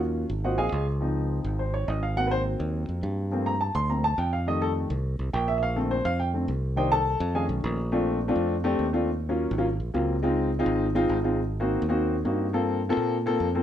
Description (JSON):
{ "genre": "Afro-Cuban jazz", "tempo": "208 BPM", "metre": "4/4", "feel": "straight", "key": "unclear", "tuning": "A4 = 440 Hz", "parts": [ { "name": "warm upright piano", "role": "accompaniment", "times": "0.0-13.6 s", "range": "D3 to C6", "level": "-26 LUFS", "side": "left 1 dB", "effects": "none" }, { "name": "fingered electric bass", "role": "bass", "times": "0.0-13.6 s", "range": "Ab1 to Bb2", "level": "-28 LUFS", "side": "equal", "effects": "none" } ], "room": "light reverb", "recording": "none", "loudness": "-24 LUFS", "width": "side -10 dB against mid", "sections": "0.0-7.9 A section; 7.9-13.6 B section", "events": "upright piano solo 0.0-7.9", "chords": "0.4 Ab13; 1.0 Dbmaj7; 2.2 Ab9; 3.3 Gm11; 4.5 F7; 5.6 Bbmaj9; 6.8 Cm7; 7.3 F7alt; 7.9 Bbmaj9; 9.1 Ebm7; 9.7 Ab13; 10.2 Dbmaj7; 11.4 Ab9; 12.5 Gm11" }